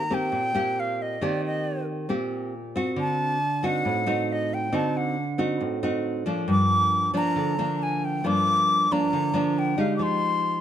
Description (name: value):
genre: bossa nova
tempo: 136 BPM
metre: 4/4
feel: straight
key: unclear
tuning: A4 = 436 Hz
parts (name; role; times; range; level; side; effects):
- breathy silver concert flute; melody; 0.0-10.6 s; D5 to D6; -25 LUFS; left 1 dB; none
- nylon-string guitar; accompaniment; 0.0-10.6 s; G2 to G4; -25 LUFS; right 1 dB; none
room: light reverb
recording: dark, warm production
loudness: -22 LUFS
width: side -10 dB against mid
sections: 0.0-10.6 A section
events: none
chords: 0.0 Eb6; 3.0 D7b9; 6.5 Gm7; 10.0 Fm9